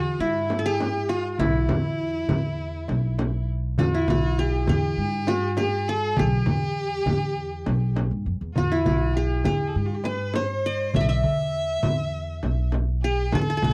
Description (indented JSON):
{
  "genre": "Arabic maqam ensemble",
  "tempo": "100 BPM",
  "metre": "4/4",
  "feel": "straight",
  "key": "E maqam huzam",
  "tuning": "A4 = 440 Hz",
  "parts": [
    { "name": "qanun", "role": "melody", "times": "0.0-13.7 s", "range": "E4 to E5", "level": "-29 LUFS", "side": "equal", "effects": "none" },
    { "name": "rich violin", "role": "second line", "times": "0.0-13.7 s", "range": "E4 to E5", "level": "-33 LUFS", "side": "equal", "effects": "none" },
    { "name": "upright bass", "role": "bass", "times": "0.0-13.7 s", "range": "B1 to G#2-50c", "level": "-29 LUFS", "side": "equal", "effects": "none" },
    { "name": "darbuka", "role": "percussion", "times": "0.5-13.7 s", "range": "none", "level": "-31 LUFS", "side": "equal", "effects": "none" },
    { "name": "frame drum", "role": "percussion", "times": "0.5-13.7 s", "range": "none", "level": "-31 LUFS", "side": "equal", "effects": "none" }
  ],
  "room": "light reverb",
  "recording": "dry, close 1970s-style studio recording",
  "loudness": "-24 LUFS",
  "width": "mono",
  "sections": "0.0-13.7 A section",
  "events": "none",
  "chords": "none"
}